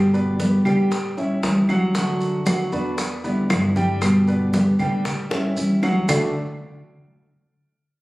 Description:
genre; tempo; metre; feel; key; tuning
latin, Cuban son and guajira; 116 BPM; 4/4; straight; D major; A4 = 439 Hz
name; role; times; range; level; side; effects
nylon-string guitar; accompaniment; 0.0-6.3 s; B2 to G4; -21 LUFS; equal; none
dark grand piano; arpeggios; 0.0-6.3 s; D3 to G5; -24 LUFS; equal; none
upright bass; bass; 0.0-6.3 s; D2 to A2; -32 LUFS; equal; none
bongos; percussion; 0.1-6.2 s; none; -30 LUFS; left 1 dB; none
congas; percussion; 0.1-6.2 s; none; -27 LUFS; equal; none
maracas; percussion; 0.1-6.2 s; none; -36 LUFS; right 1 dB; none
claves; percussion; 0.7-6.2 s; none; -32 LUFS; right 2 dB; none
room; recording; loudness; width
moderate large studio reverb, RT60 1.3 s; recorded on a phone in the room, studio ambience; -18 LUFS; side -19 dB against mid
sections
0.0-6.1 A section; 6.1-8.0 B section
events
drum fill 5.3-6.1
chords
0.0 G; 0.9 A7; 1.9 D; 3.0 Em7; 4.0 G; 5.1 A7; 6.1 D

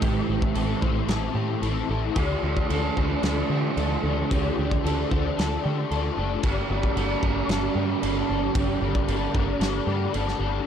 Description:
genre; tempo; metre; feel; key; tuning
rock, shoegaze and dream pop; 113 BPM; 4/4; straight; unclear; A4 = 438 Hz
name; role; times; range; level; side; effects
electric guitar through a small old amp; arpeggios; 0.0-10.7 s; G4 to C5; -34 LUFS; left 1 dB; analog chorus, digital delay
biting overdriven guitar; riff; 0.0-10.7 s; G2 to E4; -29 LUFS; right 11 dB; reverse reverb
overdriven electric guitar; riff; 0.0-10.7 s; G2 to E4; -29 LUFS; left 10 dB; ensemble chorus
picked electric bass; bass; 0.0-10.6 s; F#1 to D3; -28 LUFS; equal; none
loose indie drum kit; drums; 0.0-10.3 s; crash cymbal, kick drum, snare drum; -29 LUFS; equal; none
room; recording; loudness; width
light reverb, small room ambience; dark, warm production; -22 LUFS; side -8 dB against mid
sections
0.0-10.7 A section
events
none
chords
0.0 Am; 2.2 Dm; 6.4 Gm

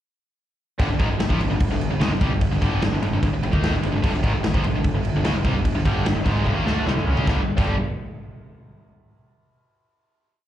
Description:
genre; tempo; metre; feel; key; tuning
hard rock; 148 BPM; 4/4; straight; unclear; A4 = 438 Hz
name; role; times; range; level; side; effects
tight distorted guitar; riff; 0.8-7.7 s; G2 to Eb4; -26 LUFS; equal; distortion, slapback echo
tight distorted guitar; riff; 0.8-7.7 s; G2 to Eb4; -29 LUFS; equal; distortion, slapback echo
fuzz fingered electric bass; bass; 0.8-7.8 s; G1 to Eb2; -24 LUFS; equal; overdrive
big rock drum kit; drums; 0.8-7.7 s; crash cymbal, kick drum, snare drum, toms; -23 LUFS; equal; none
room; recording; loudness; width
light reverb; live gig heard through the venue's PA, cassette tape, club reverb; -19 LUFS; side -12 dB against mid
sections
0.8-7.3 riff; 7.3-8.9 final chord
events
drum fill 6.5-7.3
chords
0.8 Gm; 7.3 G5

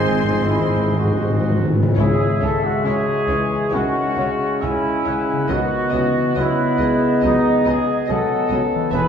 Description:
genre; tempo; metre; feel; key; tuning
classical, slow romantic movement for symphony orchestra; 57-72 BPM; 4/4; rubato; C# minor; A4 = 440 Hz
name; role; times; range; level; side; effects
rich symphonic violin section; melody; 0.0-9.0 s; C#5 to B#5; -34 LUFS; left 4 dB; none
bright clarinet; second line; 0.0-9.1 s; G#3 to B#4; -26 LUFS; right 1 dB; none
silver concert flute; second line; 0.0-9.1 s; D#5 to G#5; -26 LUFS; right 1 dB; none
warm oboe; second line; 0.0-9.1 s; C#5 to F#5; -29 LUFS; right 1 dB; none
warm symphonic violin section; second line; 0.0-9.0 s; B3 to B#4; -35 LUFS; left 1 dB; none
mellow bassoon; accompaniment; 0.0-9.1 s; C#3 to G#3; -27 LUFS; left 1 dB; none
warm symphonic viola section; accompaniment; 0.0-9.0 s; F#3 to C#4; -33 LUFS; right 1 dB; none
warm French horn section; sustained chords; 0.0-9.1 s; G#3 to E4; -25 LUFS; left 4 dB; none
concert harp; arpeggios; 0.0-9.1 s; C#3 to E5; -28 LUFS; left 5 dB; none
mellow trumpet section; stabs; 0.0-9.1 s; D#4 to B#4; -23 LUFS; right 1 dB; none
clear symphonic double bass section; bass; 0.0-9.0 s; E1 to C#2; -28 LUFS; right 2 dB; none
mellow tuba; bass; 0.0-1.7 s; G#1; -26 LUFS; right 2 dB; none
rich symphonic cello section; bass; 0.0-9.0 s; C#2 to B#3; -34 LUFS; right 2 dB; none
timpani; percussion; 0.0-6.8 s; G#2 to C#3; -21 LUFS; left 1 dB; none
room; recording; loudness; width
wet recital hall reverb, RT60 1.2 s; recorded in a church or concert hall; -16 LUFS; side -7 dB against mid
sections
0.0-2.0 A section; 2.0-9.1 B section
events
timpani fill 0.0-2.0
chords
0.0 G#; 2.0 C#m

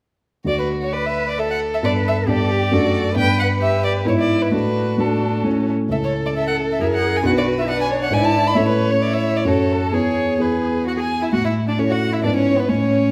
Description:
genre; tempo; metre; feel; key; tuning
quick classical-period movement for piano quartet; 133 BPM; 3/4; rubato; D major, A major from 5.9 s; A4 = 441 Hz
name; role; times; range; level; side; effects
dark grand piano; accompaniment; 0.4-13.1 s; B1 to D5; -22 LUFS; equal; none
rich violin; melody; 0.5-13.1 s; A4 to B5; -25 LUFS; equal; none
warm violin; second line; 0.5-13.1 s; B3 to D5; -27 LUFS; equal; none
warm cello; second line; 0.9-13.1 s; B3 to B4; -28 LUFS; equal; none
room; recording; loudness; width
moderate recital hall reverb, RT60 1.4 s; none; -19 LUFS; mono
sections
0.5-11.3 A section; 11.3-13.1 B section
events
none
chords
0.5 D; 1.8 G; 2.7 D/F#; 3.2 G; 4.1 E7/G#; 4.5 D/A; 5.5 A; 5.9 A/C#; 6.8 F#7; 7.2 Bm; 8.1 E7/G#; 8.6 A; 9.5 F#m; 9.9 E; 11.3 A; 12.2 E/G#

